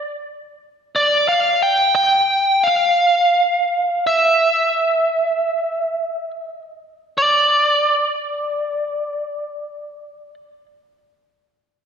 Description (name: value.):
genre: rock.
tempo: 71-89 BPM.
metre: 4/4.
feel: straight.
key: D minor.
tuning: A4 = 440 Hz.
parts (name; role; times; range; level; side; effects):
biting lead guitar; melody; 1.0-10.3 s; D5 to G5; -16 LUFS; right 1 dB; overdrive, analog delay.
room: wet scoring stage reverb, RT60 1.4 s.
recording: none.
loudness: -15 LUFS.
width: side -7 dB against mid.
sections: 0.0-7.2 A section; 7.2-10.5 B section.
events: slowing down 1.3-7.2.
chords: none.